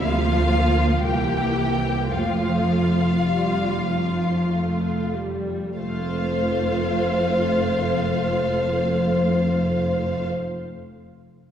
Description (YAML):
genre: classical, slow romantic movement for string orchestra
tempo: 46-62 BPM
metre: 3/4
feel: rubato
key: F major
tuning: A4 = 440 Hz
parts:
  - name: warm symphonic violin section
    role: melody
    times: 0.0-10.3 s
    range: F5 to G5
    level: -30 LUFS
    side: left 4 dB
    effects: none
  - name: warm symphonic violin section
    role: second line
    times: 0.0-10.3 s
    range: F4 to C5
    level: -26 LUFS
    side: left 1 dB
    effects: none
  - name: warm symphonic viola section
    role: accompaniment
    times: 0.0-10.3 s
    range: E3 to F4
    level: -26 LUFS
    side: right 1 dB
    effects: none
  - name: rich chamber double bass section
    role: bass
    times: 0.0-10.3 s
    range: F1 to D2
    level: -27 LUFS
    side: right 1 dB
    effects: none
  - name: rich symphonic cello section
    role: bass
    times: 0.0-10.3 s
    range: C2 to F2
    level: -26 LUFS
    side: right 1 dB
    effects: none
room: wet concert hall reverb, RT60 2.1 s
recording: heard from further back in the room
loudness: -20 LUFS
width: side -9 dB against mid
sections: 0.0-5.8 A section; 5.8-9.5 B section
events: slowing down 0.0-5.8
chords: 0.0 Bb/D; 1.0 C7; 2.1 F